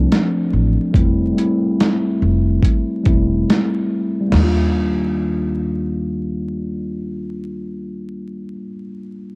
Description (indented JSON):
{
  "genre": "lo-fi hip hop",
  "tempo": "71 BPM",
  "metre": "4/4",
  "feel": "swing 64% on 16ths",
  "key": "Eb major",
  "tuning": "A4 = 440 Hz",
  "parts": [
    { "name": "mellow tine electric piano", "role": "accompaniment", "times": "0.0-9.4 s", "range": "F3 to F4", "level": "-19 LUFS", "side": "equal", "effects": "cassette tape, low-pass filter" },
    { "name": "upright bass", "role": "bass", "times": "0.0-8.5 s", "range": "E1 to Eb2", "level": "-20 LUFS", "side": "equal", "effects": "none" },
    { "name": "boom bap sampler-style drum kit", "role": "drums", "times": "0.1-4.6 s", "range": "crash cymbal, hi-hat, kick drum, snare drum, toms", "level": "-17 LUFS", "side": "equal", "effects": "overdrive" }
  ],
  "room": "light reverb",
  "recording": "home recording on cassette, vinyl crackle",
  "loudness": "-15 LUFS",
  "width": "side -30 dB against mid",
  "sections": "0.0-4.3 A section; 4.3-7.7 B section",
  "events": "none",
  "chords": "0.0 Bbmaj9 (rootless); 0.9 Fmaj9; 4.3 Ebmaj9",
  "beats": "0.10 | 0.94 1.79 2.63 3.48 | 4.32 5.17 6.01 6.86"
}